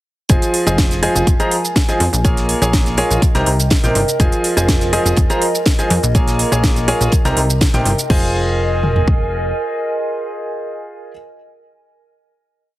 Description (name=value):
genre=piano house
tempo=123 BPM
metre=4/4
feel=straight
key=F minor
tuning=A4 = 442 Hz
part: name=clear baby grand piano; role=riff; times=0.3-11.1 s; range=C3 to Bb5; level=-19 LUFS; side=equal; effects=sidechain pumping, tape echo
part: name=plucky analog bass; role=bass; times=0.3-9.5 s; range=F1 to F2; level=-18 LUFS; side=equal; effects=sidechain pumping
part: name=damped 70s drum kit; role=drums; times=0.3-8.0 s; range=hi-hat, snare drum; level=-30 LUFS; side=right 2 dB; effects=none
part: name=house drum kit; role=drums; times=0.3-9.2 s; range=kick drum, toms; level=-15 LUFS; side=equal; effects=none
part: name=house drum kit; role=drums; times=0.3-8.2 s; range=crash cymbal, hi-hat, shaker, snare drum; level=-21 LUFS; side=right 1 dB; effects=none
part: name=warbly tape-like pad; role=texture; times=1.4-11.3 s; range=Bb4 to Ab5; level=-23 LUFS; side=right 1 dB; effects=chorus, built-in reverb, sidechain pumping
room=light reverb, digital ambience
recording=heavily compressed radio sound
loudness=-13 LUFS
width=side -16 dB against mid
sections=0.3-8.1 groove; 8.1-12.0 final chord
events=none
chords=0.3 Fm7; 2.2 Bbm7; 3.2 Cm7; 4.2 Fm7; 6.1 Bbm7; 7.1 Cm7; 8.1 Fm7